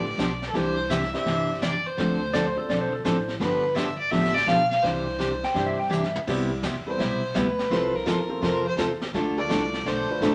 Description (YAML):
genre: country, western swing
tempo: 167 BPM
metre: 4/4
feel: swing 65% on 8ths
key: C major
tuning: A4 = 440 Hz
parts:
  - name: clear fiddle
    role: melody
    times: 0.0-10.3 s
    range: A4 to F5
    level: -29 LUFS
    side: equal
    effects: none
  - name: picked steel-string acoustic guitar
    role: accompaniment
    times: 0.0-10.3 s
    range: C3 to C5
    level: -29 LUFS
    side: equal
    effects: none
  - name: warm upright piano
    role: accompaniment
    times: 0.0-3.0, 5.6-10.2 s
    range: F3 to C5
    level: -36 LUFS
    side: equal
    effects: none
  - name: upright bass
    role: bass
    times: 0.0-10.3 s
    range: G1 to G2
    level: -36 LUFS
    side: equal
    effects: none
  - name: vintage brush drum kit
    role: drums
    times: 0.2-10.3 s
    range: brushed snare drum, crash cymbal, hi-hat, kick drum, snare drum, toms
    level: -36 LUFS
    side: equal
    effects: none
  - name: clean lap steel guitar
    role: second line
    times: 2.3-6.2 s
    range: A4 to G5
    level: -30 LUFS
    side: equal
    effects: none
room: moderate studio reverb, RT60 0.9 s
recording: none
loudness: -25 LUFS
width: mono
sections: 0.0-6.3 A section; 6.3-10.3 B section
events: drum fill 5.9-6.3; fiddle solo 6.3-10.3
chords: 0.0 G7; 0.5 Cadd9; 2.0 Dm7; 3.4 G7; 4.8 Cadd9; 6.3 Cmaj7; 7.7 F/C; 9.1 Dm